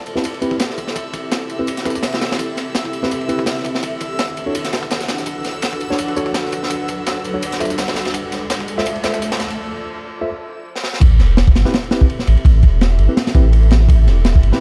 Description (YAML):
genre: drum and bass, jungle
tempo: 167 BPM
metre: 4/4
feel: swing 55% on 16ths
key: A dorian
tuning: A4 = 440 Hz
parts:
  - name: saturated sub bass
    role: bass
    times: 0.0-14.5 s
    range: E1 to D2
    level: -14 LUFS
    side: equal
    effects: tube saturation, high-pass filter
  - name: riser and sub drop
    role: sound effects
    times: 0.7-12.5 s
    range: none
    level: -31 LUFS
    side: equal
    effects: none
  - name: backwards swelling texture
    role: texture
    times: 0.3-9.6 s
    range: E6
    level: -36 LUFS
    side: equal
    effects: built-in reverb
  - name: breakbeat sampler-style drum kit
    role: drums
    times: 0.1-9.6 s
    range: hi-hat, snare drum, tambourine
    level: -34 LUFS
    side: equal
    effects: high-pass filter on perc, high-pass filter on snare, high-pass filter on hats, high-pass filter on room
  - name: crunchy breakbeat drum kit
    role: drums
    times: 0.1-14.6 s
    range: crash cymbal, kick drum, ride cymbal, snare drum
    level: -21 LUFS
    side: equal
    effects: high-pass filter on kick, high-pass filter on cymbals, high-pass filter on snare, high-pass filter on room
  - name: mellow tine electric piano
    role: stabs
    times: 0.2-14.6 s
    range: C4 to E5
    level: -26 LUFS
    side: equal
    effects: vintage 12-bit sampler grit, low-pass filter, dub echo
room: light reverb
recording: dark, warm production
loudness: -17 LUFS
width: mono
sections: 0.0-11.0 A section; 11.0-14.6 B section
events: build-up 0.0-11.0; filter sweep on tine electric piano 0.0-11.0; riser 0.7-9.6; break 9.6-11.0; drum fill 10.7; drop 11.0-14.6; impact 11.0-12.5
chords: 0.0 Am7; 3.8 Bm7; 7.4 Dm7; 11.0 Am7